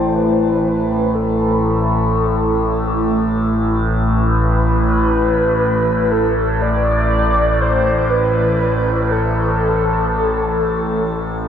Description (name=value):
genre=dark ambient drone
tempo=free time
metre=none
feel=none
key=unclear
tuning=A4 = 443 Hz
part: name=mellow horn-like synth lead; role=melody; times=0.0-11.5 s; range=A4 to D5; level=-19 LUFS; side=equal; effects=lush chorus, shimmer reverb, diffuse ambient delay
part: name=dark analog pad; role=sustained chords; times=0.0-11.5 s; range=A3 to E5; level=-22 LUFS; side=left 1 dB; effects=chorus, shimmer reverb
part: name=overtone-sweeping drone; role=drone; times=0.0-11.5 s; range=A1 to A2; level=-17 LUFS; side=equal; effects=chorus, built-in reverb, phaser
part: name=quartz singing bowl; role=texture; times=0.0-11.5 s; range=A3 to A4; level=-31 LUFS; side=right 2 dB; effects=none
room=wet huge ambient reverb, RT60 7.2 s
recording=none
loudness=-14 LUFS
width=side -8 dB against mid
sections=0.0-11.5 A section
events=fade-out on analog synth pad 0.0-11.5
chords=0.0 A5